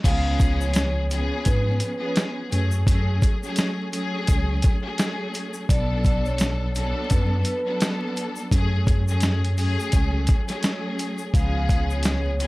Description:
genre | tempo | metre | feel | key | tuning
hip hop, boom-bap hip-hop | 85 BPM | 4/4 | swing 59% on 16ths | F# harmonic minor | A4 = 441 Hz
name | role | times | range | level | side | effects
warm studio string section | accompaniment | 0.0-12.5 s | E#3 to A4 | -28 LUFS | equal | cassette tape, high-pass filter, low-pass filter
mellow tine electric piano | bass | 0.0-12.5 s | B1 to G#2 | -24 LUFS | equal | medium stereo tremolo
dusty soul sampler-style drum kit | drums | 0.0-12.5 s | crash cymbal, hi-hat, kick drum, snare drum | -22 LUFS | equal | none
tube shaker | percussion | 0.0-12.5 s | none | -42 LUFS | left 4 dB | none
vibraphone with soft mallets | melody | 0.1-12.5 s | B4 to E#5 | -31 LUFS | equal | high-pass filter, low-pass filter, digital delay
room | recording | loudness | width
little or no reverb | vinyl crackle | -20 LUFS | side -21 dB against mid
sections
0.0-12.5 A section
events
none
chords
0.0 C#7; 2.5 F#madd9; 5.7 Bm7; 8.5 F#madd9; 11.3 C#7

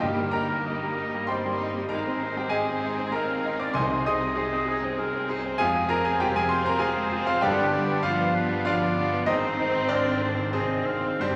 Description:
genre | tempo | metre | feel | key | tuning
classical | 97 BPM | 3/4 | rubato | unclear | A4 = 440 Hz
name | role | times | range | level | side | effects
clear concert grand piano | melody | 0.0-11.4 s | C2 to Eb6 | -28 LUFS | equal | none
rich chamber violin section | melody | 0.0-11.4 s | C4 to Ab4 | -43 LUFS | equal | none
bright clarinet | second line | 0.0-11.4 s | C4 to Eb5 | -36 LUFS | equal | none
bright large flute ensemble | second line | 0.0-11.4 s | C5 to Eb6 | -37 LUFS | equal | none
clear oboe | second line | 0.0-11.4 s | Ab4 to G5 | -36 LUFS | equal | none
rich chamber violin section | second line | 0.0-11.4 s | G3 to Eb4 | -38 LUFS | equal | none
rich chamber viola section | accompaniment | 0.0-11.4 s | G3 to C4 | -39 LUFS | equal | none
mellow French horn section | sustained chords | 0.0-11.4 s | G3 to F4 | -41 LUFS | equal | none
warm trombone section | sustained chords | 0.0-11.4 s | C3 to Ab3 | -40 LUFS | equal | none
dark chamber double bass section | bass | 0.0-11.4 s | F1 to C2 | -41 LUFS | equal | none
rich chamber cello section | bass | 0.0-11.4 s | C3 to Eb4 | -40 LUFS | equal | none
timpani | percussion | 0.0-0.9, 3.8-8.3, 11.2-11.4 s | G2 to C3 | -40 LUFS | equal | none
room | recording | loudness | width
wet concert hall reverb, RT60 1.9 s | none | -26 LUFS | mono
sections
0.0-11.4 A section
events
none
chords
0.0 Eb/G; 1.9 Ab; 3.8 Ab/C; 5.6 Fm; 7.4 G; 9.3 Ab

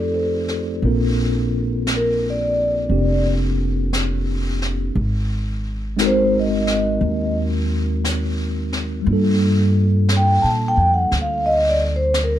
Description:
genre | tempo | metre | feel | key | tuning
jazz ballad | 58 BPM | 4/4 | swing 68% on 8ths | Bb major | A4 = 440 Hz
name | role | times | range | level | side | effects
vibraphone with soft mallets | melody | 0.0-12.4 s | A4 to A5 | -19 LUFS | equal | none
mellow tine electric piano | accompaniment | 0.0-12.4 s | G3 to D5 | -23 LUFS | left 1 dB | medium stereo tremolo
upright bass | bass | 0.0-12.4 s | F1 to Bb2 | -20 LUFS | equal | none
jazz brush drum kit | drums | 0.5-12.4 s | brushed snare drum, hi-hat, snare drum | -28 LUFS | left 1 dB | none
room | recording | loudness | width
little or no reverb | none | -17 LUFS | side -11 dB against mid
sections
0.8-12.4 A section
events
vibraphone solo 0.8-12.4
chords
0.0 F7; 0.8 Bbadd9; 5.0 Ab9; 9.1 Gm7

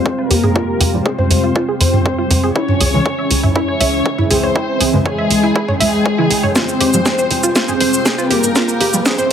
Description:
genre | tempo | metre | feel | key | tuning
melodic techno | 120 BPM | 4/4 | straight | F harmonic minor | A4 = 440 Hz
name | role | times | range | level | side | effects
wide unison lead | melody | 0.0-9.3 s | Ab3 to Db4 | -19 LUFS | equal | ensemble chorus, sidechain pumping, dub echo
dark chamber violin section | second line | 0.0-9.3 s | Ab4 to Db5 | -22 LUFS | left 2 dB | sidechain pumping, low-pass filter, digital delay
evolving wavetable pad | sustained chords | 0.0-9.3 s | C3 to G5 | -22 LUFS | equal | phaser, built-in reverb, sidechain pumping
electronic kick drum | drums | 0.1-9.2 s | none | -20 LUFS | equal | high-pass filter on kick, high-pass filter on room
analog pluck | arpeggios | 0.2-9.3 s | Fb4 to Fb5 | -21 LUFS | right 1 dB | chorus, sidechain pumping, digital delay
tight sequencer bass | bass | 0.3-9.3 s | Db2 to F2 | -19 LUFS | equal | sidechain pumping
house drum kit | drums | 0.3-9.3 s | hi-hat, shaker, snare drum, toms | -17 LUFS | right 1 dB | none
synth brass stab | stabs | 0.9-9.0 s | Ab2 to Ab3 | -20 LUFS | right 1 dB | chorus, sidechain pumping, digital delay
room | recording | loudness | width
moderate digital room reverb, RT60 1.3 s | high-pass filter | -12 LUFS | side -8 dB against mid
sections
0.0-9.3 A section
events
build-up 0.0-9.3; filter sweep on synth pluck 0.0-9.3; filter sweep on analog synth lead 0.0-9.3; filter sweep on violin section 0.0-9.3; filter sweep on synth stab 0.0-9.3; filter sweep 0.0-9.3; drum fill 6.6-9.3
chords
0.0 Fmadd9; 2.6 Dbm; 6.6 Fmadd9

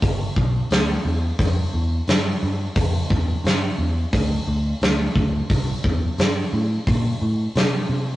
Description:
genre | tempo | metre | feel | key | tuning
blues rock power trio and southern rock | 88 BPM | 4/4 | straight | G mixolydian | A4 = 439 Hz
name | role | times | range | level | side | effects
vintage muted picked electric bass | bass | 0.0-8.1 s | G1 to C3 | -22 LUFS | equal | none
big rock drum kit | drums | 0.0-7.7 s | hi-hat, kick drum, snare drum | -21 LUFS | equal | vintage 12-bit sampler grit
room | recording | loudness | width
light reverb | rough rehearsal-room recording, warm saturation, cassette tape, nothing above 10.9 kHz | -19 LUFS | side -16 dB against mid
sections
0.0-8.2 A section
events
none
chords
none

